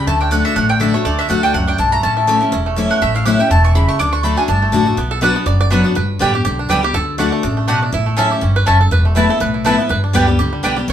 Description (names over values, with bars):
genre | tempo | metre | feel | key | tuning
bluegrass | 244 BPM | 4/4 | swing 55% on 8ths | D major | A4 = 440 Hz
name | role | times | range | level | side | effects
bluegrass banjo | melody | 0.0-10.9 s | D3 to D5 | -22 LUFS | right 6 dB | none
picked steel-string acoustic guitar | accompaniment | 0.0-10.9 s | E2 to G4 | -18 LUFS | left 3 dB | none
mandolin | stabs | 0.0-10.7 s | A3 to D6 | -17 LUFS | right 1 dB | none
upright bass | bass | 0.0-10.9 s | E1 to D2 | -18 LUFS | equal | none
room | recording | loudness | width
wet studio reverb, RT60 0.5 s | band playing live in one room | -13 LUFS | side -10 dB against mid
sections
0.0-5.0 A section; 5.0-10.9 A section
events
mandolin solo 0.0-5.0; five-string banjo solo 5.0-10.9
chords
0.1 D; 2.0 A; 4.0 D; 5.0 Bm; 6.0 G; 6.9 D; 7.9 A; 8.9 Esus4; 9.9 G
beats
| 0.07 0.32 0.56 0.81 | 1.05 1.30 1.54 1.79 | 2.03 2.28 2.52 2.77 | 3.02 3.26 3.51 3.75 | 4.00 4.24 4.49 4.73 | 4.98 5.22 5.47 5.72 | 5.96 6.21 6.46 6.70 | 6.95 7.19 7.44 7.68 | 7.93 8.18 8.42 8.67 | 8.91 9.16 9.41 9.65 | 9.90 10.14 10.39 10.63 | 10.88